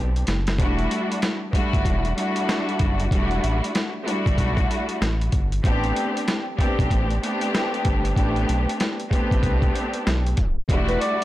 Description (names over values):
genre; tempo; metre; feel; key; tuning
hip hop, boom-bap hip-hop; 95 BPM; 4/4; swing 63% on 16ths; E minor; A4 = 441 Hz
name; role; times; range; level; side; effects
clear symphonic string section; accompaniment; 0.0-11.2 s; G3 to G4; -24 LUFS; left 1 dB; high-pass filter, low-pass filter
round analog bass; bass; 0.0-11.0 s; E1 to C2; -24 LUFS; equal; tube saturation
boom bap sampler-style drum kit; drums; 0.2-11.2 s; hi-hat, kick drum, snare drum; -24 LUFS; equal; none
mellow tenor saxophone; melody; 10.9-11.2 s; B4 to D5; -22 LUFS; equal; high-pass filter, low-pass filter
room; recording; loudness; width
small room ambience; blown-out, overdriven recording, vinyl crackle, overdrive, tape stop; -20 LUFS; side -15 dB against mid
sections
0.0-10.7 A section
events
drum fill 0.0-0.6; tape stop 10.4-10.7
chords
0.0 Am11; 0.6 Em11; 5.6 Am11; 10.7 Em11